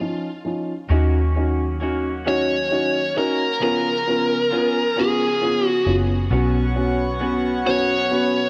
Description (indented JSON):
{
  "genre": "six-eight pop ballad",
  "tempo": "44 BPM (dotted quarters)",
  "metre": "6/8",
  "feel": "straight",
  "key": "unclear",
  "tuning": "A4 = 439 Hz",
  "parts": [
    { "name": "dark upright piano", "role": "accompaniment", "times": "0.0-8.4 s", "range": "E#3 to F#4", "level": "-25 LUFS", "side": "equal", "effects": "cassette tape" },
    { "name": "twelve-string electric guitar", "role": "arpeggios", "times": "0.9-8.5 s", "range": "B2 to G#4", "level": "-35 LUFS", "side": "equal", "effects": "spring reverb, cassette tape, analog delay" },
    { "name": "vintage muted fingered electric bass", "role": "bass", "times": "0.9-8.5 s", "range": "F#1 to D#2", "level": "-23 LUFS", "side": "equal", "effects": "none" },
    { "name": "bluesy overdriven lead guitar", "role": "melody", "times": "2.3-8.5 s", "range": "G#4 to C#5", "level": "-23 LUFS", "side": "equal", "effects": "distortion" },
    { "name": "warm studio string section", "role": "sustained chords", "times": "6.3-8.5 s", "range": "B3 to C#6", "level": "-29 LUFS", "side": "equal", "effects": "cassette tape" }
  ],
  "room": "moderate lush hall reverb, RT60 2.6 s",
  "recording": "home recording on cassette",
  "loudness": "-21 LUFS",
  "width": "mono",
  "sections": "0.9-8.5 A section",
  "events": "none",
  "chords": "0.0 C#add9/E#; 0.9 D#m7; 3.6 C#7; 6.3 Bsus2"
}